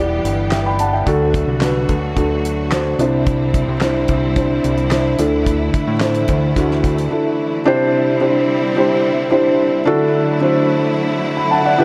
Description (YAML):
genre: piano-driven pop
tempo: 109 BPM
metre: 4/4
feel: straight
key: unclear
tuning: A4 = 440 Hz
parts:
  - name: felt-muted upright piano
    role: accompaniment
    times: 0.0-11.8 s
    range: C3 to B5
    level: -18 LUFS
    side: equal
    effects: none
  - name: bright studio string section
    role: sustained chords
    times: 0.0-11.8 s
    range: D3 to G4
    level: -26 LUFS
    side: equal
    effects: none
  - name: fat analog bass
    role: bass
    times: 0.0-7.1 s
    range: E1 to A2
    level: -22 LUFS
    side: equal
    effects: none
  - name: damped 70s drum kit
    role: drums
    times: 0.3-7.1 s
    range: handclaps, hi-hat, kick drum, snare drum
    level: -23 LUFS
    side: equal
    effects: none
room: moderate lush hall reverb, RT60 1.8 s, studio ambience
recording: none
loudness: -17 LUFS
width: mono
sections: 0.0-7.7 A section; 7.7-11.8 B section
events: break 7.1-7.7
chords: 0.0 Em; 1.1 D; 3.0 Cadd9; 5.2 Dsus2; 7.7 Cadd9; 9.9 Dadd9